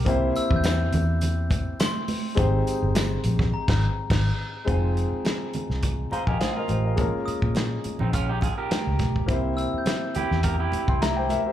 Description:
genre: lush 1970s-style soul.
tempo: 104 BPM.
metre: 4/4.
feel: swing 54% on 16ths.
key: F minor.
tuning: A4 = 440 Hz.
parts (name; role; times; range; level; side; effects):
warm grand piano; accompaniment; 0.0-11.5 s; Ab3 to C6; -28 LUFS; left 2 dB; slapback echo.
electric guitar through a small old amp; riff; 0.0, 6.1-11.4 s; C4 to C5; -30 LUFS; right 5 dB; slapback echo.
vintage muted fingered electric bass; bass; 0.0-11.4 s; F1 to Bb2; -25 LUFS; equal; none.
warm soul drum kit; drums; 0.1-11.4 s; crash cymbal, hi-hat, kick drum, snare drum; -27 LUFS; equal; none.
tambourine; percussion; 0.4-3.4 s; none; -44 LUFS; left 4 dB; none.
glockenspiel with hard plastic mallets; texture; 0.4-10.7 s; Ab5 to G6; -37 LUFS; left 2 dB; none.
congas; percussion; 0.6-11.4 s; none; -34 LUFS; right 5 dB; slapback echo.
room: little or no reverb.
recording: live gig heard through the venue's PA, club reverb.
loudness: -22 LUFS.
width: side -11 dB against mid.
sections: 0.0-4.7 A section; 4.7-11.5 B section.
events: band accent 3.5-4.7.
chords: 0.1 C7; 2.4 Abmaj7; 4.7 Fm7; 7.0 Bbm7; 9.3 C7.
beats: | 0.06 0.64 1.22 1.79 | 2.37 2.95 3.52 4.10 | 4.68 5.25 5.83 6.41 | 6.98 7.56 8.14 8.71 | 9.29 9.87 10.44 11.02.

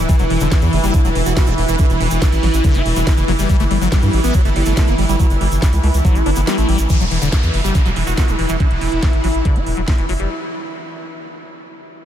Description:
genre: psychedelic trance.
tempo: 141 BPM.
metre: 4/4.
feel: straight.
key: E minor.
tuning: A4 = 435 Hz.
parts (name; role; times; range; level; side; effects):
evolving wavetable pad; sustained chords; 0.0-10.3 s; E3 to E4; -21 LUFS; right 1 dB; phaser, built-in reverb, sidechain pumping.
round analog bass; bass; 0.0-10.3 s; E1 to G2; -17 LUFS; equal; none.
liquid acid bass; riff; 0.1-10.3 s; D3 to F#4; -23 LUFS; moving between left 6 dB and right 4 dB; phaser, auto-pan, sidechain pumping, tape echo.
electronic kick drum; drums; 0.1-10.0 s; none; -14 LUFS; equal; small room reverb.
garage drum kit; drums; 0.1-10.3 s; hi-hat, snare drum; -28 LUFS; right 1 dB; small room reverb.
egg shaker; percussion; 0.1-8.6 s; none; -32 LUFS; right 3 dB; none.
downlifter; sound effects; 6.9-10.3 s; none; -29 LUFS; equal; none.
room: light reverb, digital ambience.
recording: none.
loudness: -13 LUFS.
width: side -10 dB against mid.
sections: 0.0-6.9 A section; 6.9-10.3 B section.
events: drop 0.0-6.9; kick drops out 6.5-6.9.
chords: 0.1 Esus2; 3.5 G5; 6.9 Esus2.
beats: | 0.09 0.52 0.94 1.37 | 1.79 2.22 2.64 3.07 | 3.49 3.92 4.34 4.77 | 5.20 5.62 6.05 6.47 | 6.90 7.32 7.75 8.18 | 8.60 9.03 9.45 9.88.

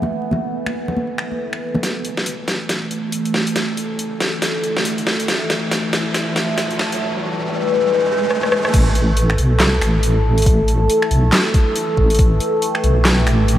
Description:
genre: deep dubstep.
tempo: 139 BPM.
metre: 4/4.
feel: swing 60% on 16ths, half-time.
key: unclear.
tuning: A4 = 439 Hz.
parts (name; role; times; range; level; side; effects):
overtone-sweeping drone; sustained chords; 0.0-13.6 s; E3 to B4; -20 LUFS; equal; chorus, built-in reverb, phaser.
congas; percussion; 0.0-1.8 s; none; -25 LUFS; equal; dub echo.
dubstep drum kit; drums; 0.7-13.6 s; crash cymbal, finger snaps, handclaps, hi-hat, rim click, snare drum; -21 LUFS; equal; overdrive, high-pass filter on snare, high-pass filter on hats, high-pass filter on cymbals.
riser; sound effects; 3.8-8.7 s; none; -28 LUFS; equal; none.
deep soft wobble bass; bass; 8.7-13.6 s; A1 to C2; -15 LUFS; equal; chorus.
electronic kick drum; drums; 8.7-12.3 s; none; -14 LUFS; equal; overdrive.
room: wet cathedral reverb, RT60 4.5 s.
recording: dreamy mix soaked in reverb, vinyl crackle.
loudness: -15 LUFS.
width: side -12 dB against mid.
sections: 0.0-1.8 A section; 1.8-8.7 B section; 8.7-13.6 C section.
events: build-up 1.8-8.7; drum fill 1.8-7.0, 8.3-8.7; riser 3.8-8.7; drop 8.7-13.6.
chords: 0.0 A5.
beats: | 0.10 0.54 0.97 1.40 | 1.83 2.26 2.69 3.13 | 3.56 3.99 4.42 4.85 | 5.28 5.72 6.15 6.58 | 7.01 7.44 7.87 8.30 | 8.74 9.17 9.60 10.03 | 10.46 10.89 11.33 11.76 | 12.19 12.62 13.05 13.48.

